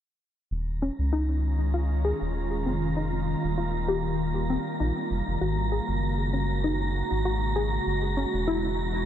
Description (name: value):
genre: chillout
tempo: 98 BPM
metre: 4/4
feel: swing 56% on 16ths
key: unclear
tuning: A4 = 440 Hz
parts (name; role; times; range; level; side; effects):
- ethereal airy pad; sustained chords; 1.3-9.1 s; Db3 to Gb4; -30 LUFS; equal; ensemble chorus, built-in reverb
- round analog bass; bass; 0.5-9.1 s; Eb1 to Db2; -28 LUFS; equal; tube saturation
- wind-like tuned noise texture; texture; 1.1-9.1 s; Bb5 to Bb6; -35 LUFS; right 1 dB; built-in reverb
- soft round pluck; arpeggios; 0.8-8.8 s; C4 to Ab4; -32 LUFS; left 3 dB; lush chorus, cassette tape, analog delay
room: light reverb, digital ambience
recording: none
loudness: -25 LUFS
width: side -10 dB against mid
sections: 0.5-9.1 A section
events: filter sweep on synth pluck 0.5-9.1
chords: 0.5 Eb9sus4; 2.7 F9sus4; 5.4 Ab9sus4; 7.9 Gb9sus4